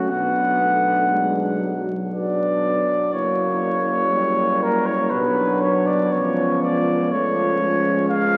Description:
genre	classical, hymn-like piece for brass band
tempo	60 BPM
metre	3/4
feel	rubato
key	unclear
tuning	A4 = 440 Hz
part	mellow flugelhorn	melody	0.0-8.4 s	F#4 to F#5	-23 LUFS	equal	none
part	warm French horn section	second line	0.0-8.4 s	C#4 to E4	-32 LUFS	equal	none
part	clear euphonium	accompaniment	0.0-8.4 s	E#3 to B3	-29 LUFS	equal	none
part	mellow euphonium	accompaniment	0.0-8.4 s	F#3 to B3	-29 LUFS	equal	none
part	mellow tuba	bass	0.0-8.4 s	F#1 to C#2	-30 LUFS	equal	none
room	wet cathedral reverb, RT60 4.1 s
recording	very old 78 rpm record, vinyl crackle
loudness	-20 LUFS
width	mono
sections	0.0-8.4 A section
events	none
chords	0.1 Bm; 3.1 F#7; 5.1 Bm; 6.1 C#

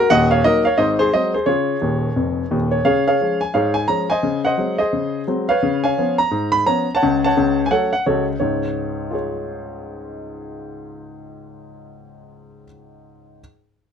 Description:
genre	jazz, stride piano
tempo	173 BPM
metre	4/4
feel	swing 62% on 8ths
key	Db major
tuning	A4 = 442 Hz
part	clear grand piano	solo	0.0-13.4 s	Eb1 to Cb6	-17 LUFS	equal	none
room	light reverb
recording	none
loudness	-16 LUFS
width	side -7 dB against mid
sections	0.0-2.9 A section; 2.9-8.4 B section; 8.4-11.2 C section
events	grand piano fill 1.8-2.9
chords	0.1 Ebm; 0.8 Ab7; 1.5 Db; 4.2 Ab7/Db; 5.6 Db7; 7.0 Gbm/Db; 8.4 Db

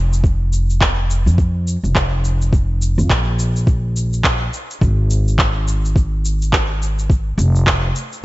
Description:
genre	organic downtempo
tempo	105 BPM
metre	4/4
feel	swing 59% on 16ths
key	F minor pentatonic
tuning	A4 = 440 Hz
part	upright bass	bass	0.0-7.9 s	F1 to F2	-16 LUFS	equal	sidechain pumping
part	electronic shaker and handclaps	drums	0.1-8.2 s	none	-21 LUFS	equal	none
part	electronic kick drum	drums	0.2-7.8 s	none	-16 LUFS	equal	none
room	little or no reverb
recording	nothing above 7.8 kHz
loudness	-15 LUFS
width	side -18 dB against mid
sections	0.0-8.2 A section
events	none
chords	none

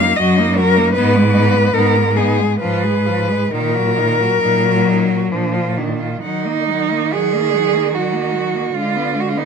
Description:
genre	classical, lyrical piece for cello ensemble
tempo	63-77 BPM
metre	3/4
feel	rubato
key	Eb minor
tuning	A4 = 440 Hz
part	rich cello	melody	0.0-9.4 s	Ab4 to Gb5	-19 LUFS	left 3 dB	none
part	rich cello	second line	0.0-9.4 s	Cb4 to Ab4	-20 LUFS	right 8 dB	none
part	rich cello	accompaniment	0.0-9.4 s	Eb3 to Cb4	-20 LUFS	left 3 dB	none
part	warm cello	bass	0.0-9.4 s	Gb2 to Eb3	-20 LUFS	right 2 dB	none
room	light reverb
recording	minimal, uncompressed stereo recording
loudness	-14 LUFS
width	side -6 dB against mid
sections	0.0-6.2 A section; 6.2-9.4 B section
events	none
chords	0.0 Ebm/Gb; 1.0 Abm; 2.6 Fdim/Ab; 3.5 Ebm/Bb; 5.3 Bb; 6.2 Ebm; 8.8 Ddim7

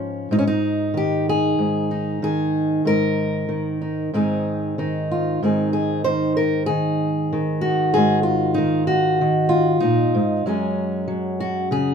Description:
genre	folk, solo fingerstyle acoustic guitar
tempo	95 BPM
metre	4/4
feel	straight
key	Ab major, Ab mixolydian from 5.4 s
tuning	A4 = 439 Hz
part	fingerpicked steel-string acoustic guitar	solo	0.0-11.9 s	Gb2 to C5	-18 LUFS	equal	none
room	light reverb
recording	minimal, uncompressed stereo recording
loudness	-18 LUFS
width	side -6 dB against mid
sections	0.0-5.4 A section; 5.4-11.9 B section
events	none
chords	0.3 Ab5; 4.1 Ab; 10.5 Gbsus2

